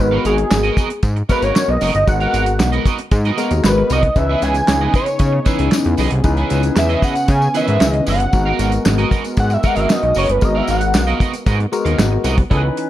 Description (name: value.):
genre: early-eighties boogie funk.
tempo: 115 BPM.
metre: 4/4.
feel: straight.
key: unclear.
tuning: A4 = 440 Hz.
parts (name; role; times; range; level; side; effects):
fat analog lead; melody; 0.0-11.2 s; G#4 to G#5; -19 LUFS; equal; slapback echo, plate reverb.
barky tine electric piano; accompaniment; 0.0-12.9 s; D#3 to B4; -22 LUFS; left 4 dB; overdrive, phaser, plate reverb.
electric guitar at the edge of break-up; riff; 0.0-12.8 s; B3 to E#5; -24 LUFS; right 7 dB; analog chorus.
fat analog bass; bass; 0.0-12.7 s; F#1 to C#3; -18 LUFS; equal; none.
damped 70s drum kit; drums; 0.2-12.9 s; handclaps, hi-hat, kick drum, snare drum; -18 LUFS; equal; none.
tambourine; percussion; 0.3-12.4 s; none; -32 LUFS; left 5 dB; none.
warm analog pad; sustained chords; 4.2-12.5 s; C#3 to A#4; -26 LUFS; equal; chorus, plate reverb.
room: light reverb, studio reverb.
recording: dark, warm production.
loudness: -14 LUFS.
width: side -13 dB against mid.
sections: 0.0-12.5 A section.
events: analog synth lead solo 0.0-12.5.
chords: 0.0 G#m9; 4.2 C#m9; 8.3 G#m9.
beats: 0.51 1.03 1.55 | 2.07 2.60 3.12 3.64 | 4.16 4.68 5.20 5.73 | 6.25 6.77 7.29 7.81 | 8.34 8.86 9.38 9.90 | 10.42 10.94 11.46 11.99 | 12.51.